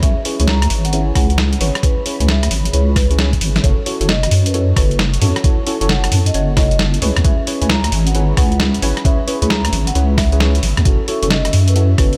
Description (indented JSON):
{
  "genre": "UK garage, two-step garage",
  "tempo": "133 BPM",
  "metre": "4/4",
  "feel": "swing 64% on 16ths",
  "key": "F# minor",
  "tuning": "A4 = 441 Hz",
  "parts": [
    { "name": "vibraphone with soft mallets", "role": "melody", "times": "0.0-12.2 s", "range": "A4 to A#5", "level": "-29 LUFS", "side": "equal", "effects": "delay" },
    { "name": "deep mellow chord stab", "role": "stabs", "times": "0.0-12.1 s", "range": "C#4 to C#5", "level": "-25 LUFS", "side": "equal", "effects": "chorus, phaser, delay" },
    { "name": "deep soft wobble bass", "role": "bass", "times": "0.0-12.2 s", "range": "F#1 to F#2", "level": "-18 LUFS", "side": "equal", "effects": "chorus" },
    { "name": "boom bap sampler-style drum kit", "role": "drums", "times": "0.0-12.2 s", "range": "hi-hat, rim click, snare drum", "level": "-22 LUFS", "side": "equal", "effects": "none" },
    { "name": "electronic kick drum", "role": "drums", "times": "0.0-12.1 s", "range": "none", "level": "-17 LUFS", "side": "equal", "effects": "none" },
    { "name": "warbly tape-like pad", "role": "texture", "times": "0.8-12.2 s", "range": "C#4 to B5", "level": "-34 LUFS", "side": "equal", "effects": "none" }
  ],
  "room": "light reverb, digital ambience",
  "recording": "none",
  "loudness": "-15 LUFS",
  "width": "mono",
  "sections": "0.0-12.2 A section",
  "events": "drum fill 3.2-3.6",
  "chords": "0.0 C#m7; 3.6 F#m7; 7.0 C#m7; 10.9 F#m7"
}